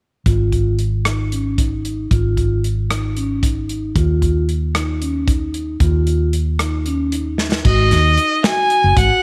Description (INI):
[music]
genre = progressive instrumental, band music in an uneven meter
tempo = 227 BPM (eighths)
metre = 7/8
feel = straight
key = unclear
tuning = A4 = 440 Hz
[part]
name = vibraphone with soft mallets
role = arpeggios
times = 0.3-9.2 s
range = C#4 to F#4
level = -26 LUFS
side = equal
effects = none
[part]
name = woody fretless electric bass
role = bass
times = 0.3-9.1 s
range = F#1 to D#2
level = -20 LUFS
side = equal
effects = none
[part]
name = natural country drum kit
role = drums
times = 0.3-9.1 s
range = crash cymbal, hi-hat, kick drum, rim click, snare drum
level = -22 LUFS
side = equal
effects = none
[part]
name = clear violin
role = melody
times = 7.7-9.2 s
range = D#5 to G#5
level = -17 LUFS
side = equal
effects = none
[sound]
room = light reverb, small room ambience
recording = none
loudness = -18 LUFS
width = mono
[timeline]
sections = 0.3-7.7 A section; 7.7-9.2 B section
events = drum fill 7.4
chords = 0.3 G#5; 4.0 D#sus2; 7.7 G#7(no3)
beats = | 0.26 0.52 0.79 1.05 1.32 1.58 1.84 | 2.11 2.37 2.64 2.90 3.16 3.43 3.69 | 3.96 4.22 4.49 4.75 5.01 5.28 5.54 | 5.80 6.07 6.33 6.60 6.86 7.12 7.39 | 7.65 7.92 8.18 8.44 8.71 8.97